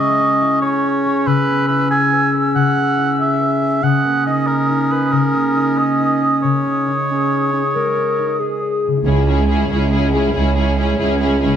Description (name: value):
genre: cinematic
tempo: 93 BPM (dotted quarters)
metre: 12/8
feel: straight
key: C# dorian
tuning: A4 = 440 Hz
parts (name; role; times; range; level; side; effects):
- clear clarinet; second line; 0.0-9.1 s; C#4 to A#4; -19 LUFS; right 1 dB; none
- silver concert flute; second line; 0.0-8.8 s; C#6 to E6; -22 LUFS; equal; none
- warm oboe; second line; 0.0-8.4 s; A#4 to G#5; -19 LUFS; right 2 dB; none
- concert harp; arpeggios; 0.0-11.6 s; C#3 to C#5; -21 LUFS; left 6 dB; none
- warm symphonic violin section; melody; 9.1-11.6 s; G#4; -22 LUFS; left 4 dB; none
- rich studio violin section; second line; 9.1-11.6 s; E4; -25 LUFS; left 3 dB; none
- rich symphonic viola section; accompaniment; 9.1-11.6 s; C#4; -22 LUFS; right 2 dB; none
- rich symphonic cello section; bass; 9.1-11.6 s; C#2; -16 LUFS; right 3 dB; none
- rich symphonic double bass section; bass; 9.1-9.5 s; C#2; -18 LUFS; right 3 dB; none
room: moderate scoring stage reverb, RT60 1.6 s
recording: dark, warm production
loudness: -14 LUFS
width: side -9 dB against mid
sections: 0.0-9.1 A section; 9.1-11.6 B section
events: none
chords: 0.0 C#m; 1.3 E/C#; 3.8 D#5/C#; 6.4 C#sus2; 9.1 C#m